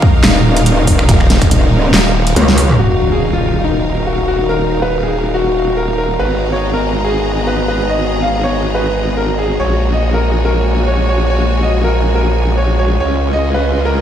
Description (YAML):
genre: heavy wobble dubstep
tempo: 141 BPM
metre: 4/4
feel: swing 55% on 16ths, half-time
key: Eb minor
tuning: A4 = 439 Hz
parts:
  - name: supersaw chords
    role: sustained chords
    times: 0.0-14.0 s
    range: Eb3 to Bb5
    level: -20 LUFS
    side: left 1 dB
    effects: sidechain pumping, low-pass filter
  - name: electronic kick drum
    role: drums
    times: 0.0-1.5 s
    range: none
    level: -11 LUFS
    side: equal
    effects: studio reverb
  - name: bright studio string section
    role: texture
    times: 0.0-14.0 s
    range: Db4 to Bb5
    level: -23 LUFS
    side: equal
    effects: sidechain pumping
  - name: metallic wobble bass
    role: bass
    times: 0.2-2.8 s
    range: Eb1 to Db2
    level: -11 LUFS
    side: equal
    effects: chorus, overdrive
  - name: dubstep drum kit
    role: drums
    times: 0.2-12.9 s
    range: finger snaps, handclaps, hi-hat, snare drum, toms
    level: -14 LUFS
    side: equal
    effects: low-pass filter on hats, studio reverb, low-pass filter on snare, low-pass filter on toms
  - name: formant-sweep wobble bass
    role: bass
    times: 1.1-14.0 s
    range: Eb1 to Db2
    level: -16 LUFS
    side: equal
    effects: chorus, overdrive
  - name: clear grand piano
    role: melody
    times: 2.8-14.0 s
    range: Eb4 to F5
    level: -18 LUFS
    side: equal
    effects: digital delay
  - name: impact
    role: sound effects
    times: 2.8-4.5 s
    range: none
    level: -20 LUFS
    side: equal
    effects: none
room: light reverb, digital ambience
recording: played on a big sound system in a bare room, large studio reverb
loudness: -11 LUFS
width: side -9 dB against mid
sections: 0.0-2.8 A section; 2.8-14.0 B section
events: drop 0.0-2.8; drum fill 2.4-2.8; impact 2.8-4.5; filter sweep on supersaw synth 2.8-14.0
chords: 0.0 Ebm; 2.8 Ebmadd9; 6.2 Abm7; 9.6 Gbadd9/Bb; 13.0 Db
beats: 0.24 0.66 | 1.09 1.51 1.94 2.36 | 2.79 3.21 3.64 4.07 | 4.49 4.92 5.34 5.77 | 6.19 6.62 7.04 7.47 | 7.90 8.32 8.75 9.17 | 9.60 10.02 10.45 10.88 | 11.30 11.73 12.15 12.58 | 13.00 13.43 13.85